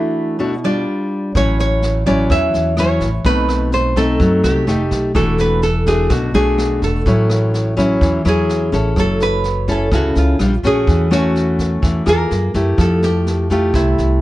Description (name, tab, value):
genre	bossa nova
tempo	126 BPM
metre	4/4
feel	straight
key	A major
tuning	A4 = 440 Hz
part	nylon-string guitar	melody	0.0-14.2 s	E4 to E5	-20 LUFS	right 1 dB	none
part	nylon-string guitar	accompaniment	0.0-14.2 s	A2 to A4	-17 LUFS	left 1 dB	none
part	upright bass	bass	1.4-14.2 s	E1 to F#2	-18 LUFS	equal	none
part	vintage brush drum kit	drums	1.4-14.0 s	kick drum, rim click, snare drum	-23 LUFS	equal	none
room	little or no reverb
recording	dark, warm production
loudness	-13 LUFS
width	side -16 dB against mid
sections	0.0-9.0 A section; 9.0-14.2 A section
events	none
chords	0.0 E9sus4; 0.9 Dmadd11/G; 1.3 A6; 3.2 B7b9; 4.7 F9; 5.2 E9sus4; 7.1 A6; 9.0 F#m7; 10.4 Bb6; 10.9 A6/E; 12.3 F#maj9; 12.8 Fmaj9